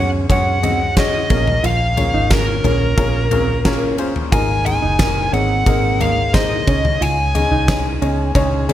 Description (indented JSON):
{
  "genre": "piano-driven pop",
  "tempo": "89 BPM",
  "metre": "4/4",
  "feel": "straight",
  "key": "unclear",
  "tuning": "A4 = 440 Hz",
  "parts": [
    { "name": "dark smooth lead guitar", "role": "melody", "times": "0.0-8.7 s", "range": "Bb4 to Ab5", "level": "-20 LUFS", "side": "equal", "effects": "overdrive" },
    { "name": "clear upright piano", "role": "accompaniment", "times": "0.0-8.7 s", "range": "Ab2 to Eb5", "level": "-22 LUFS", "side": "left 5 dB", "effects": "none" },
    { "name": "mellow electric guitar", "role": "riff", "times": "0.0-8.7 s", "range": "Bb3 to F4", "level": "-24 LUFS", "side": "right 7 dB", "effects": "none" },
    { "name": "vintage muted fingered electric bass", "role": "bass", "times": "0.0-8.7 s", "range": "Gb1 to Gb2", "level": "-20 LUFS", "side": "equal", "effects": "none" },
    { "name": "huge arena drum kit", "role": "drums", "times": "0.3-8.7 s", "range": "kick drum, ride cymbal, snare drum, toms", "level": "-20 LUFS", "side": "equal", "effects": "none" }
  ],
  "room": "small room ambience",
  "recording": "none",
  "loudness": "-14 LUFS",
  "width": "side -12 dB against mid",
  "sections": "0.0-8.7 A section",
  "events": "none",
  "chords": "0.0 Gbsus2; 1.3 Bbm7; 6.7 Dbsus2"
}